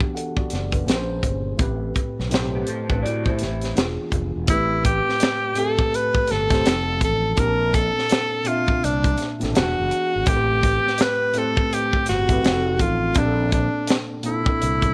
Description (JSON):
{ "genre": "R&B, neo-soul", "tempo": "83 BPM", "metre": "4/4", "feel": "swing 62% on 16ths", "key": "A dorian, A phrygian from 4.5 s", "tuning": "A4 = 440 Hz", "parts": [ { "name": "tine electric piano", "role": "accompaniment", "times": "0.0-14.9 s", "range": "A2 to A5", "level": "-29 LUFS", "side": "equal", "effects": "lush chorus" }, { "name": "tight funk drum kit", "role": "drums", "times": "0.0-14.9 s", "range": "hi-hat, kick drum, snare drum", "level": "-25 LUFS", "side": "equal", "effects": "none" }, { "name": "fretless electric bass", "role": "bass", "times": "0.4-14.9 s", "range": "E1 to A2", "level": "-28 LUFS", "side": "equal", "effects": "none" }, { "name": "electric guitar through a small old amp", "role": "second line", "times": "2.5-3.7 s", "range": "B3 to D5", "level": "-32 LUFS", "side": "equal", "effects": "subtle chorus" }, { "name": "bright tenor saxophone", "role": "melody", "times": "4.5-14.9 s", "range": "D4 to B4", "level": "-24 LUFS", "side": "equal", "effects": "slapback echo" } ], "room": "studio ambience", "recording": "lossy compression artefacts", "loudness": "-21 LUFS", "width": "mono", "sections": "0.0-4.5 A section; 4.5-14.9 B section", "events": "none", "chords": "0.0 Em9; 0.9 Bbm9; 1.6 Am9; 3.8 E7b9; 4.5 Am9; 6.7 F7b9; 7.4 Bbmaj9; 9.5 E7; 10.3 Am9; 12.4 F7b9; 13.2 Bbmaj9" }